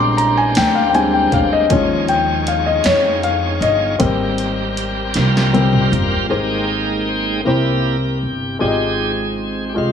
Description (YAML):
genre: slow gospel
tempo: 52 BPM (dotted quarters)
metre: 6/8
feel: straight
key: Ab major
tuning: A4 = 441 Hz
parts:
  - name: warm grand piano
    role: accompaniment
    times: 0.0-9.9 s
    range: Ab2 to D6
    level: -17 LUFS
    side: left 3 dB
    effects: none
  - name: bright tonewheel organ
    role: sustained chords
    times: 0.0-9.9 s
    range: G3 to G5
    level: -22 LUFS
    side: right 2 dB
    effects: fast rotary speaker, overdrive
  - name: upright bass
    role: bass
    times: 0.0-9.9 s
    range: G1 to F2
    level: -22 LUFS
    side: right 1 dB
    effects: none
  - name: punchy analog drum machine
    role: drums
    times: 0.2-6.3 s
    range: hi-hat, kick drum, snare drum, toms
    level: -21 LUFS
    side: equal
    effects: none
room: light reverb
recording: small room ambience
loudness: -14 LUFS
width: side -8 dB against mid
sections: 0.0-6.3 A section; 6.3-9.9 B section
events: grand piano solo 0.0-6.3; drum fill 5.1-6.3; tonewheel organ solo 6.3-9.9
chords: 0.0 Bb13; 1.7 Eb9sus4; 4.0 Abmaj9; 7.5 C7; 8.6 Fm9/Ab